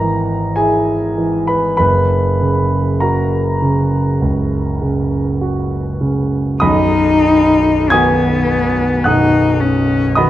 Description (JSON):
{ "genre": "classical, romantic duo for cello and grand piano", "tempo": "44-54 BPM", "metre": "4/4", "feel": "rubato", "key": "B major", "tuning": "A4 = 440 Hz", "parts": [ { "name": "warm grand piano", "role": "accompaniment", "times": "0.0-10.3 s", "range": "B0 to G#6", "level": "-14 LUFS", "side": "right 1 dB", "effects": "none" }, { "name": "rich cello", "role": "melody", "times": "6.6-10.3 s", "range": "B3 to D#4", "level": "-14 LUFS", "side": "left 3 dB", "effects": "none" } ], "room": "moderate recital hall reverb, RT60 1.3 s", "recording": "dark, warm production", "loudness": "-12 LUFS", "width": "side -13 dB against mid", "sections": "0.0-6.6 A section; 6.6-10.3 B section", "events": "none", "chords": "0.0 E/G#; 1.8 F#; 6.6 B" }